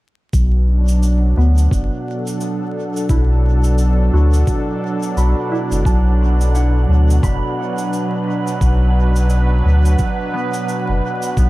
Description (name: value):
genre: ambient dub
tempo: 87 BPM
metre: 4/4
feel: swing 59% on 16ths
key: B minor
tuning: A4 = 440 Hz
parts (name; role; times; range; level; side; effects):
- warm analog pad; sustained chords; 0.3-11.5 s; B2 to B4; -21 LUFS; right 1 dB; chorus, tremolo
- soft dub sub bass; bass; 0.3-11.5 s; F#1 to D2; -13 LUFS; equal; tube saturation
- cabasa; drums; 0.3-11.5 s; none; -36 LUFS; right 2 dB; dub echo
- electronic kick drum; drums; 0.3-11.5 s; none; -19 LUFS; equal; overdrive
- wind-like tuned noise texture; texture; 1.0-11.5 s; F#5; -30 LUFS; right 2 dB; built-in reverb
- concert harp; arpeggios; 1.4-11.5 s; B3 to B5; -28 LUFS; right 2 dB; low-pass filter, dub echo
room: studio reverb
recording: echo-heavy mix, vinyl crackle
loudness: -14 LUFS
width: side -18 dB against mid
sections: 0.3-11.5 A section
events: filter sweep on harp 0.3-11.5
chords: 0.3 Bm7